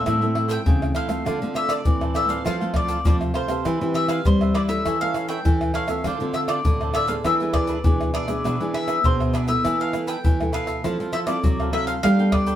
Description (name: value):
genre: samba and choro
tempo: 100 BPM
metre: 4/4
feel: straight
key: A minor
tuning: A4 = 440 Hz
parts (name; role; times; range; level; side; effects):
- bowl-back mandolin; melody; 0.0-12.6 s; C5 to G5; -26 LUFS; left 2 dB; none
- cavaquinho; accompaniment; 0.0-12.6 s; D4 to G5; -31 LUFS; right 4 dB; none
- nylon-string guitar; accompaniment; 0.0-12.6 s; A2 to B4; -29 LUFS; equal; none
- nylon-string guitar; bass; 0.0-12.5 s; A2 to G3; -25 LUFS; equal; none
- tube shaker, surdo, pandeiro and tamborim; percussion; 0.1-12.6 s; none; -23 LUFS; left 1 dB; none
room: moderate studio reverb, RT60 0.7 s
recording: band playing live in one room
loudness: -19 LUFS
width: side -11 dB against mid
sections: 0.1-12.6 A section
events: none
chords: 0.1 Am; 1.3 Dm7; 2.5 F; 3.7 Cmaj7/E; 4.9 A/E; 6.1 Dm7; 7.2 E7; 9.6 Esus4; 10.8 Fmaj7; 12.0 Gadd9